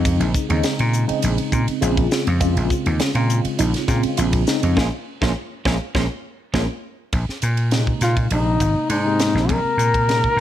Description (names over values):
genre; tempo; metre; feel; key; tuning
electric jazz fusion; 102 BPM; 4/4; straight; Bb minor; A4 = 440 Hz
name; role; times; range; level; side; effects
tine electric piano; accompaniment; 0.0-10.4 s; C3 to F4; -24 LUFS; equal; overdrive, medium stereo tremolo, phaser
vintage slap bass; bass; 0.0-10.4 s; Ab1 to Bb2; -20 LUFS; equal; none
tight funk drum kit; drums; 0.1-10.4 s; hi-hat, kick drum, ride cymbal, snare drum; -24 LUFS; equal; none
clean electric guitar; stabs; 2.4-6.6 s; Bb3 to F4; -27 LUFS; right 5 dB; lush chorus
breathy trumpet; melody; 8.0-10.4 s; Eb4 to Bb4; -20 LUFS; left 2 dB; none
room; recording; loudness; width
light reverb, small room ambience; none; -17 LUFS; side -11 dB against mid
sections
0.0-7.1 A section; 7.1-10.4 B section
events
band accent 4.8-7.1; drum fill 5.9-7.1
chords
0.0 Bbm11; 7.1 Bb9sus4